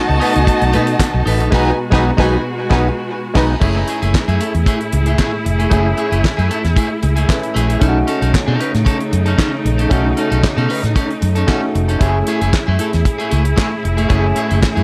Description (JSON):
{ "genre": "disco", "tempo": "114 BPM", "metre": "4/4", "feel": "straight", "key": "F# dorian", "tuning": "A4 = 440 Hz", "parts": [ { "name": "warm studio violin section", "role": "second line", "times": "0.0-3.5 s", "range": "D#4 to A5", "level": "-22 LUFS", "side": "equal", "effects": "tape echo" }, { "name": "overdriven clav", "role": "accompaniment", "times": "0.0-14.8 s", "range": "G#3 to B4", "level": "-25 LUFS", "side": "equal", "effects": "none" }, { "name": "clear studio string section", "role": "sustained chords", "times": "0.0-14.8 s", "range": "A2 to G#4", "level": "-24 LUFS", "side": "equal", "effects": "none" }, { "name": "electric guitar at the edge of break-up", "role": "accompaniment", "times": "0.1-14.8 s", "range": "A3 to B4", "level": "-24 LUFS", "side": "equal", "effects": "warbly pitch drift" }, { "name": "vintage muted fingered electric bass", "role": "bass", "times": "0.1-14.8 s", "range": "E#1 to B2", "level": "-18 LUFS", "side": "equal", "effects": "none" }, { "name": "damped 70s drum kit", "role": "drums", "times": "0.2-14.8 s", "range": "crash cymbal, handclaps, hi-hat, kick drum, snare drum", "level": "-20 LUFS", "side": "equal", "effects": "none" } ], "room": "light reverb", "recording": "none", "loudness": "-16 LUFS", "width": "mono", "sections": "0.0-3.6 A section; 3.6-14.8 B section", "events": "band accent 1.5-3.6", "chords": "0.0 B7; 1.5 G#m7/B; 3.6 F#m9; 7.8 B9; 12.0 F#m9", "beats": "0.47 0.99 | 1.51 2.04 2.56 3.09 | 3.61 4.14 4.66 5.19 | 5.71 6.24 6.76 7.29 | 7.81 8.34 8.86 9.39 | 9.91 10.44 10.96 11.48 | 12.01 12.53 13.06 13.58 | 14.11 14.63" }